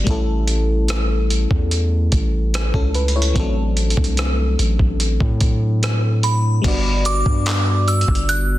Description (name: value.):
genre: contemporary R&B.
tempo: 73 BPM.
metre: 4/4.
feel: straight.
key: G major.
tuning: A4 = 440 Hz.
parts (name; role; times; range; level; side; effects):
FM electric piano; accompaniment; 0.0-8.6 s; F3 to D5; -24 LUFS; left 3 dB; chorus.
long sustained 808-style bass; bass; 0.0-8.6 s; G1 to A2; -18 LUFS; equal; none.
dusty soul sampler-style drum kit; drums; 0.1-8.5 s; crash cymbal, handclaps, hi-hat, kick drum, rim click; -21 LUFS; equal; soft clipping on snare.
glassy synth bell; melody; 6.2-8.6 s; B5 to F#6; -22 LUFS; right 3 dB; chorus.
room: little or no reverb.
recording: dense, heavily limited modern master.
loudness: -16 LUFS.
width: side -15 dB against mid.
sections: 0.0-6.6 A section; 6.6-8.6 B section.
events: none.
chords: 0.1 A7; 3.4 D7/A; 6.6 Gmaj7.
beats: | 0.07 0.89 1.71 2.53 | 3.36 4.18 5.00 5.82 | 6.64 7.47 8.29.